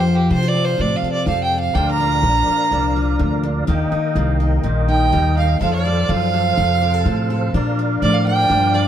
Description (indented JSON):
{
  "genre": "honky-tonk and classic country",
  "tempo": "125 BPM",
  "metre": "4/4",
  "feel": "straight",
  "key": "Bb major",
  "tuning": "A4 = 440 Hz",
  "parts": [
    { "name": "clear fiddle", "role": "melody", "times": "0.0-8.9 s", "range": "G4 to Bb5", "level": "-19 LUFS", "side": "right 4 dB", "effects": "none" },
    { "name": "picked steel-string acoustic guitar", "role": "accompaniment", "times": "0.0-8.9 s", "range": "Bb2 to Bb4", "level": "-21 LUFS", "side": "left 3 dB", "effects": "none" },
    { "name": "upright bass", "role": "bass", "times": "0.0-8.9 s", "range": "Bb1 to C3", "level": "-19 LUFS", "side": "equal", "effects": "none" },
    { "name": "tonewheel organ", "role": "accompaniment", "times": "1.7-8.9 s", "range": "A4 to G5", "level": "-26 LUFS", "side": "right 4 dB", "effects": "slow rotary speaker, overdrive, chorus vibrato" }
  ],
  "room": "moderate plate reverb, RT60 2.5 s",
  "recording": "heard from further back in the room",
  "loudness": "-15 LUFS",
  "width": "side -10 dB against mid",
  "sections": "0.0-8.9 A section",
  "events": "fiddle solo 0.0-8.9",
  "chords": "0.0 F; 1.8 Bb; 3.7 Eb; 5.6 F; 7.5 Bb"
}